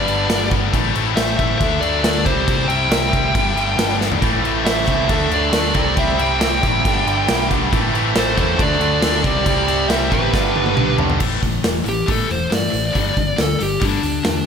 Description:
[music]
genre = hard rock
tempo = 138 BPM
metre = 4/4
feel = straight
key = A minor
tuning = A4 = 440 Hz
[part]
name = smooth overdriven lead guitar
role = melody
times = 0.0-14.5 s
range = D4 to G5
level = -22 LUFS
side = equal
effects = analog delay
[part]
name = smooth overdriven lead guitar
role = second line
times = 0.0-11.0 s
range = G4 to E5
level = -29 LUFS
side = right 3 dB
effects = slapback echo, analog delay
[part]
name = heavy high-gain guitar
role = riff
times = 0.0-14.4 s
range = G2 to D4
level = -23 LUFS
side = left 11 dB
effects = distortion, slapback echo
[part]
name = tight distorted guitar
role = riff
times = 0.0-11.2 s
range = G2 to E4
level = -25 LUFS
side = equal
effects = distortion, slapback echo
[part]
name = picked electric bass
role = bass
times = 0.0-14.4 s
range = E1 to A2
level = -24 LUFS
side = equal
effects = none
[part]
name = big rock drum kit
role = drums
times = 0.1-14.4 s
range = crash cymbal, hi-hat, kick drum, snare drum, toms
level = -20 LUFS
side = equal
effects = none
[part]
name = overdriven semi-hollow guitar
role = riff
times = 4.2-11.2 s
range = G2 to D4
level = -24 LUFS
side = right 12 dB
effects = slapback echo
[sound]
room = moderate lush hall reverb, RT60 2.0 s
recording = big arena sound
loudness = -15 LUFS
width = side -7 dB against mid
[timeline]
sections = 0.0-11.2 A section; 11.2-14.5 B section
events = drum fill 4.0, 10.3-11.2; lead electric guitar solo 11.2-14.5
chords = 0.0 G; 0.7 Am; 1.6 D; 2.3 C; 3.4 G; 4.2 Am; 5.1 D; 5.8 C; 6.8 G; 7.7 Am; 8.6 D; 9.2 C; 10.3 G; 11.2 A5; 13.0 G5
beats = 0.30 | 0.73 1.17 1.61 2.04 | 2.48 2.92 3.35 3.79 | 4.23 4.66 5.10 5.54 | 5.97 6.41 6.85 7.28 | 7.72 8.15 8.59 9.03 | 9.46 9.90 10.34 10.77 | 11.21 11.64 12.08 12.52 | 12.95 13.39 13.82 14.26

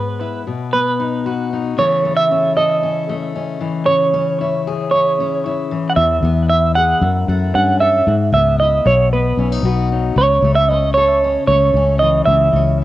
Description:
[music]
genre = indie folk with a building arrangement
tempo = 114 BPM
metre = 4/4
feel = straight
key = unclear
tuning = A4 = 440 Hz
[part]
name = semi-hollow electric guitar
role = melody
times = 0.0-12.8 s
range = B4 to F#5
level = -15 LUFS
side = right 3 dB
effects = harmonic tremolo, cassette tape, analog delay
[part]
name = fingerpicked steel-string acoustic guitar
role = accompaniment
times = 0.0-12.8 s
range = E2 to A4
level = -21 LUFS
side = left 6 dB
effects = cassette tape
[part]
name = fingered electric bass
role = bass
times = 6.0-12.8 s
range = B1 to G#2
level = -17 LUFS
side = left 1 dB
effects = none
[sound]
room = light reverb, studio ambience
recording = home recording on cassette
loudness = -13 LUFS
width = side -14 dB against mid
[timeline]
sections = 0.0-12.8 A section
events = none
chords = 0.5 B; 1.8 A/C#; 3.9 C#m; 6.0 E; 7.0 F#m; 8.1 E; 8.9 B; 10.2 A/C#; 12.3 C#m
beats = 0.19 0.72 1.25 | 1.77 2.30 2.82 3.35 | 3.87 4.40 4.92 5.45 | 5.97 6.50 7.02 7.55 | 8.07 8.60 9.12 9.65 | 10.18 10.70 11.22 11.75 | 12.27 12.80

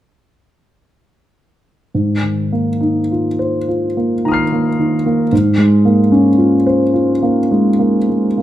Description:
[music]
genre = classical, impressionist solo piano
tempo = 49-57 BPM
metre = 3/4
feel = rubato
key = Ab major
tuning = A4 = 440 Hz
[part]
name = warm grand piano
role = solo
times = 1.9-8.4 s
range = Ab2 to C7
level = -12 LUFS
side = equal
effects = none
[sound]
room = light reverb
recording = none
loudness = -12 LUFS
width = side -13 dB against mid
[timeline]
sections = 1.9-8.4 A section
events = none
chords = 1.9 Ab69; 5.3 Bbm9/Ab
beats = | 1.94 3.10 4.24 | 5.32 6.38 7.49

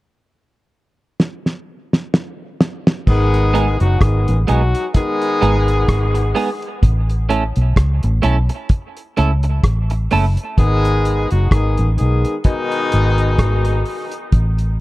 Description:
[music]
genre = dub reggae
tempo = 64 BPM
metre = 4/4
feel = swing 56% on 16ths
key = G# phrygian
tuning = A4 = 439 Hz
[part]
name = cloth-damped thuddy drum kit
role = drums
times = 1.2-14.8 s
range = crash cymbal, hi-hat, kick drum, rim click, snare drum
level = -16 LUFS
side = equal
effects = none
[part]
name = clear horn section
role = second line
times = 3.1-13.8 s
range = B2 to G#4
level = -19 LUFS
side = left 2 dB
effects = dub echo
[part]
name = vintage muted fingered electric bass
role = bass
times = 3.1-14.8 s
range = F#1 to C#2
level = -16 LUFS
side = equal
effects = none
[part]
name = clean electric guitar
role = accompaniment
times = 3.5-10.2 s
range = G#3 to A4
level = -21 LUFS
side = right 4 dB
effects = lush chorus, dub echo
[sound]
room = small room ambience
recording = dark, warm production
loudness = -14 LUFS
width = side -18 dB against mid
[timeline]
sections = 0.0-3.1 A section; 3.1-14.8 B section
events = drum fill 1.2-3.1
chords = 0.0 N.C.; 3.1 G#m; 6.8 A; 10.6 G#m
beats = 0.26 1.20 2.13 | 3.07 4.01 4.95 5.89 | 6.82 7.76 8.70 9.64 | 10.57 11.51 12.45 13.39 | 14.32

